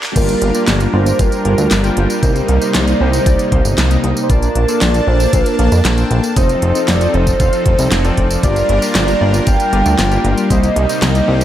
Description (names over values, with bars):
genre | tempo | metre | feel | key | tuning
synthwave | 116 BPM | 4/4 | straight | G minor | A4 = 441 Hz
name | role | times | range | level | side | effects
soft supersaw | sustained chords | 0.0-11.4 s | C3 to A5 | -19 LUFS | equal | sidechain pumping
pop drum kit | drums | 0.0-11.4 s | crash cymbal, handclaps, hi-hat, snare drum, tambourine | -20 LUFS | equal | none
warm velvety synth lead | melody | 0.2-11.4 s | Bb4 to G5 | -19 LUFS | right 2 dB | chorus, diffuse ambient delay
chorused polysynth | stabs | 0.2-11.4 s | Bb3 to A5 | -22 LUFS | left 4 dB | analog delay
chorused synth bass | bass | 0.2-11.4 s | F1 to F2 | -15 LUFS | equal | sidechain pumping
electronic kick drum | drums | 0.2-10.6 s | none | -15 LUFS | equal | none
room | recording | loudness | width
light reverb | high-pass filter, faint mains hum | -11 LUFS | side -11 dB against mid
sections
0.2-11.4 A section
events
break 0.0; drum fill 0.0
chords
0.0 Gm7; 2.2 Cm7; 4.3 Bbmaj7; 6.4 F7; 8.4 Gm7; 10.5 Cm7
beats
| 0.16 0.68 1.19 1.71 | 2.23 2.75 3.26 3.78 | 4.30 4.81 5.33 5.85 | 6.37 6.88 7.40 7.92 | 8.43 8.95 9.47 9.99 | 10.50 11.02